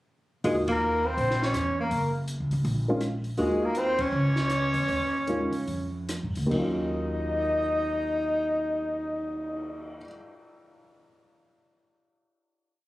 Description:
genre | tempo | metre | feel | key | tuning
modal jazz | 138-164 BPM | 4/4 | swing 64% on 8ths | Eb dorian | A4 = 439 Hz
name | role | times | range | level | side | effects
breathy alto saxophone | second line | 0.4-9.9 s | Ab3 to Eb4 | -29 LUFS | right 1 dB | none
dark baby grand piano | accompaniment | 0.4-10.1 s | Eb2 to Gb4 | -30 LUFS | equal | none
upright bass | bass | 0.4-10.0 s | Gb1 to Ab2 | -31 LUFS | equal | none
compact cocktail drum kit | drums | 0.4-9.9 s | crash cymbal, cymbal swell, hi-hat, kick drum, ride cymbal, rim click, snare drum | -41 LUFS | equal | none
growling trumpet | melody | 0.5-10.0 s | Ab4 to Eb5 | -30 LUFS | left 1 dB | none
room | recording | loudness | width
light reverb | recorded on a phone in the room, club reverb, compression | -25 LUFS | side -17 dB against mid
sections
0.4-6.5 A section; 6.5-10.0 final chord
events
band accent 0.6, 3.9; slowing down 3.4-6.5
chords
0.4 Ebm7; 3.4 Bbm; 6.5 Ebm7

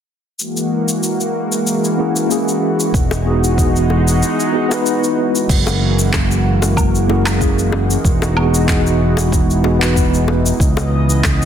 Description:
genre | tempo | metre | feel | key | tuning
sunset chillout | 94 BPM | 4/4 | swing 54% on 16ths | unclear | A4 = 439 Hz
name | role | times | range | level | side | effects
lush unison pad | sustained chords | 0.4-11.5 s | C#3 to D#5 | -19 LUFS | equal | chorus
deep house drum kit | drums | 0.4-11.5 s | cabasa, crash cymbal, handclaps, woodblock | -22 LUFS | equal | studio reverb
mellow tine electric piano | accompaniment | 2.0-10.6 s | A#3 to B4 | -19 LUFS | equal | medium stereo tremolo, auto-pan, low-pass filter, digital delay
fingered electric bass | bass | 2.9-11.5 s | E1 to C#2 | -16 LUFS | equal | none
electronic kick drum | drums | 2.9-11.4 s | none | -17 LUFS | equal | studio reverb
bongos | percussion | 3.1-11.4 s | none | -26 LUFS | left 5 dB | none
room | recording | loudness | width
moderate lush hall reverb, RT60 2.2 s | dense, heavily limited modern master | -13 LUFS | side -9 dB against mid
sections
0.4-5.5 A section; 5.5-11.5 B section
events
none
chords
0.4 F#9; 2.9 Emaj9; 5.5 F#9; 8.0 Emaj9; 10.6 C#m9

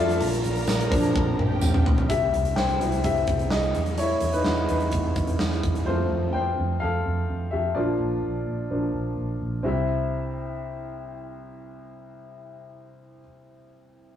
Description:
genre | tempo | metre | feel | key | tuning
piano-driven pop | 127 BPM | 4/4 | straight | C mixolydian | A4 = 440 Hz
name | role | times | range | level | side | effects
dark symphonic violin section | second line | 0.0-2.1 s | G4 to Bb5 | -33 LUFS | left 1 dB | tape echo
clear upright piano | accompaniment | 0.0-14.2 s | C2 to G5 | -26 LUFS | left 2 dB | none
vintage muted fingered electric bass | bass | 0.0-13.2 s | Bb1 to F2 | -28 LUFS | right 1 dB | none
huge arena drum kit | drums | 0.1-5.9 s | hi-hat, kick drum, snare drum, toms | -26 LUFS | equal | none
tambourine | percussion | 0.7-1.7 s | none | -37 LUFS | right 4 dB | none
room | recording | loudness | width
moderate studio reverb, RT60 0.6 s | rough rehearsal-room recording, warm saturation, small room ambience | -22 LUFS | side -10 dB against mid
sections
0.0-2.1 A section; 2.1-9.6 B section; 9.6-13.4 C section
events
upright piano solo 0.0-2.1, 2.1-9.6; drum fill 1.1-2.1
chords
0.2 Bb; 2.1 C; 3.7 E; 5.9 F; 7.8 Bb; 9.6 C

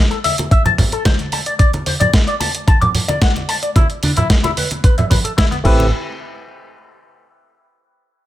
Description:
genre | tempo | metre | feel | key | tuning
nu-disco, nu disco | 111 BPM | 4/4 | straight | A dorian | A4 = 441 Hz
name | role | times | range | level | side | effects
electric guitar with an envelope filter | riff | 0.1-5.9 s | B3 to D6 | -20 LUFS | left 3 dB | wide subtle chorus, low-pass filter, dub echo
dusty soul sampler-style drum kit | drums | 0.1-5.8 s | crash cymbal, hi-hat, snare drum | -21 LUFS | equal | overdrive, studio reverb
congas | percussion | 0.3-5.9 s | none | -20 LUFS | right 1 dB | none
electronic kick drum | drums | 0.5-5.8 s | none | -13 LUFS | equal | overdrive, studio reverb
barky tine electric piano | accompaniment | 5.6-5.9 s | A3 to B4 | -20 LUFS | right 1 dB | dub echo
fingered electric bass with an envelope filter | bass | 5.6-5.9 s | A1 | -16 LUFS | equal | none
room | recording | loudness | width
digital ambience | none | -13 LUFS | side -14 dB against mid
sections
0.0-5.9 A section; 5.9-8.1 B section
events
none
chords
0.0 Am; 1.3 D5; 3.8 E5; 5.7 Am7; 5.9 N.C.

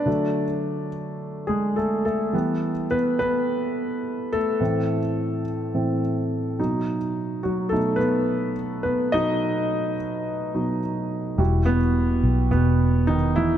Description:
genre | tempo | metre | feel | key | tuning
piano-driven pop | 106 BPM | 4/4 | straight | E harmonic minor | A4 = 440 Hz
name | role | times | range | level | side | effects
warm concert grand piano | accompaniment | 0.0-13.6 s | A2 to D#5 | -22 LUFS | equal | none
vintage muted fingered electric bass | bass | 11.4-13.6 s | E1 to B1 | -20 LUFS | left 1 dB | none
room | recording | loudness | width
moderate lush hall reverb, RT60 2.7 s | none | -21 LUFS | side -10 dB against mid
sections
0.0-11.4 A section; 11.4-13.6 B section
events
grand piano solo 0.0-11.4, 11.4-13.6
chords
0.1 D; 2.3 Em; 4.6 Am; 6.6 B; 11.4 Emadd9

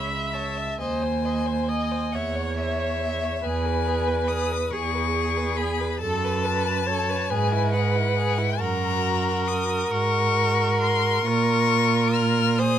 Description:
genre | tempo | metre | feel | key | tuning
classical, slow romantic movement for string quartet | 46 BPM (dotted quarters) | 6/8 | rubato | unclear | A4 = 440 Hz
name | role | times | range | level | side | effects
rich violin | melody | 0.0-12.8 s | E5 to F6 | -27 LUFS | left 10 dB | none
rich violin | second line | 0.0-12.8 s | E4 to E5 | -32 LUFS | left 4 dB | none
rich viola | accompaniment | 0.0-12.8 s | G#4 to E5 | -27 LUFS | right 2 dB | none
rich cello | bass | 0.0-12.8 s | C#2 to Bb2 | -26 LUFS | right 3 dB | none
room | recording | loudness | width
little or no reverb | close, detailed microphones | -21 LUFS | side -10 dB against mid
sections
0.0-12.8 A section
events
none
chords
0.0 C#m; 0.8 G#/D#; 2.1 C#m/E; 3.4 E; 6.0 B5/F#; 7.3 E/G#; 8.6 Gb; 9.9 Ab9sus4; 11.3 Bbm

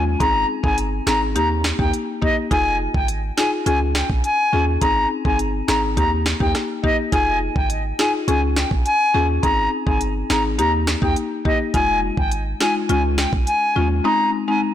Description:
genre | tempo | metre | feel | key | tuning
dancehall | 104 BPM | 4/4 | straight | unclear | A4 = 442 Hz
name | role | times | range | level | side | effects
silver concert flute | melody | 0.0-14.6 s | Eb5 to Bb5 | -20 LUFS | equal | tape echo
buzzing marimba with medium mallets | accompaniment | 0.0-14.6 s | Ab3 to Ab4 | -23 LUFS | left 5 dB | none
clean 808-style bass | bass | 0.0-14.0 s | F1 to Eb2 | -23 LUFS | right 1 dB | none
afro-pop drum kit | drums | 0.2-13.6 s | hi-hat, kick drum, rim click, snare drum | -22 LUFS | right 1 dB | none
room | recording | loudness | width
light reverb | blown-out, overdriven recording, overdrive | -17 LUFS | side -11 dB against mid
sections
0.0-14.7 A section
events
none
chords
0.2 Ab; 1.4 Eb; 2.5 Fm7; 3.7 Db; 4.8 Ab; 6.0 Eb; 7.1 Fm7; 8.3 Db; 9.4 Ab; 10.6 Eb; 11.7 Fm7; 12.9 Db; 14.0 Ab

